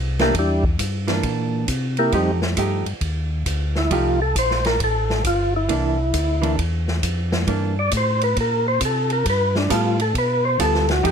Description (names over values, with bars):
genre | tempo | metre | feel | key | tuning
soul jazz organ trio | 135 BPM | 4/4 | swing 65% on 8ths | C mixolydian | A4 = 438 Hz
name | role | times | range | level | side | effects
mellow tonewheel organ | bass | 0.0-11.1 s | G1 to C3 | -22 LUFS | equal | overdrive, chorus vibrato, slow rotary speaker
percussive tonewheel organ | melody | 0.2-11.1 s | G3 to D5 | -20 LUFS | equal | slow rotary speaker
vintage hollow-body jazz guitar | accompaniment | 0.2-11.1 s | E3 to A4 | -23 LUFS | right 4 dB | none
swinging big-band drum kit | drums | 0.2-11.1 s | hi-hat, kick drum, ride cymbal, snare drum | -26 LUFS | equal | none
room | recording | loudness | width
light reverb | close, detailed microphones | -18 LUFS | side -7 dB against mid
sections
0.0-11.1 A section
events
tonewheel organ solo 0.0-11.1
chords
0.0 C9; 2.1 F9; 5.7 C9; 9.3 G9